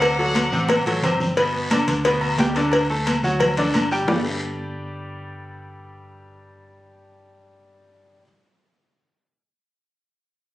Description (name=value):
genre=latin, salsa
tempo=177 BPM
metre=4/4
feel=straight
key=G major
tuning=A4 = 437 Hz
part: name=bright trumpet section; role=melody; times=0.0-0.9 s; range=D5 to F#5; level=-24 LUFS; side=equal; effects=slapback echo
part: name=bright grand piano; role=accompaniment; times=0.0-8.2 s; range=B2 to A5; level=-24 LUFS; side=left 1 dB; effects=none
part: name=hollow-body short-scale fingered electric bass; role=bass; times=0.0-8.2 s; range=G1 to D2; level=-28 LUFS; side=equal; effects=none
part: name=agogo bells and timbales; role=percussion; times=0.0-4.2 s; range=none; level=-27 LUFS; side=equal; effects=none
part: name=congas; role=percussion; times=0.0-4.2 s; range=none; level=-26 LUFS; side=equal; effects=none
part: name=cowbell and bongos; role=percussion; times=0.0-4.2 s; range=none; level=-23 LUFS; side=left 1 dB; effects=none
part: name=guiro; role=percussion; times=0.0-4.2 s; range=none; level=-33 LUFS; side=left 1 dB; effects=none
room=moderate studio reverb, RT60 0.6 s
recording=recorded on a phone in the room, studio ambience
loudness=-18 LUFS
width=side -15 dB against mid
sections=0.0-1.4 A section; 1.4-4.1 B section; 4.1-6.8 C section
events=drum fill 0.7-1.4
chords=0.0 D7; 1.4 G; 2.7 D; 4.1 Gadd9